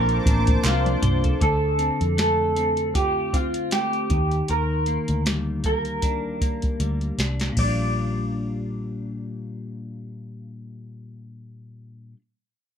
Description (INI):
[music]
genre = indie pop, bedroom pop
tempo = 78 BPM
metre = 4/4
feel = swing 55% on 16ths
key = Bb major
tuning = A4 = 436 Hz
[part]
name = electric guitar through a small old amp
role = melody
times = 0.0-12.1 s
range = F4 to D5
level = -25 LUFS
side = right 2 dB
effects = wide subtle chorus, slapback echo
[part]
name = chorused retro synth keys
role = accompaniment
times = 0.0-1.4 s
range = F3 to A5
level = -31 LUFS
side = right 4 dB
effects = cassette tape
[part]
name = clean electric guitar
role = accompaniment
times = 0.0-12.2 s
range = Bb2 to C5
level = -29 LUFS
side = left 3 dB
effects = analog chorus, warbly pitch drift
[part]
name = warm analog pad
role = sustained chords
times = 0.0-1.4 s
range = C5 to D6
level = -33 LUFS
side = equal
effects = chorus
[part]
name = vintage muted fingered electric bass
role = bass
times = 0.0-12.1 s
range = A1 to F2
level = -26 LUFS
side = equal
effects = none
[part]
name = soft vintage rhythm box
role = drums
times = 0.1-7.8 s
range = crash cymbal, hi-hat, kick drum, snare drum, toms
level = -24 LUFS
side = equal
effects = none
[part]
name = group handclap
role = percussion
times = 0.6-0.8 s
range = none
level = -32 LUFS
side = right 8 dB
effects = none
[sound]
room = light reverb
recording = none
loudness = -21 LUFS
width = side -8 dB against mid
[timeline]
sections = 0.0-1.4 A section; 1.4-7.6 B section; 7.6-10.7 C section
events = drum fill 0.6-1.4, 6.8-7.6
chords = 0.0 Bbmaj9; 1.4 Dm7; 4.1 Ebmaj7; 7.6 Bb6